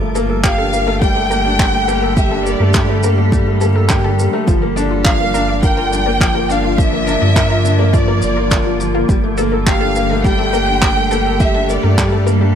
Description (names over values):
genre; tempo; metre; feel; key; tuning
piano and strings electronica; 104 BPM; 4/4; straight; G dorian; A4 = 436 Hz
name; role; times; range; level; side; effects
granular cloud pad; sustained chords; 0.0-12.6 s; D3 to Bb4; -23 LUFS; right 1 dB; built-in reverb, sidechain pumping
clear concert grand piano; riff; 0.0-12.6 s; F3 to D5; -18 LUFS; left 2 dB; ping-pong delay
round analog bass; bass; 0.0-12.6 s; G1 to G2; -18 LUFS; right 1 dB; sidechain pumping
wide unison pluck; arpeggios; 0.1-12.5 s; F4 to D6; -26 LUFS; left 3 dB; none
shaker and handclaps; drums; 0.2-12.4 s; none; -22 LUFS; right 1 dB; none
electronic kick drum; drums; 0.4-12.1 s; none; -16 LUFS; right 1 dB; overdrive
warm studio violin section; melody; 0.5-12.3 s; D5 to G5; -19 LUFS; right 1 dB; none
room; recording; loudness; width
light reverb, small room ambience; none; -12 LUFS; side -8 dB against mid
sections
0.0-12.6 A section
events
none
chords
0.0 Gmadd9; 4.5 Bb/G; 9.1 Gmadd9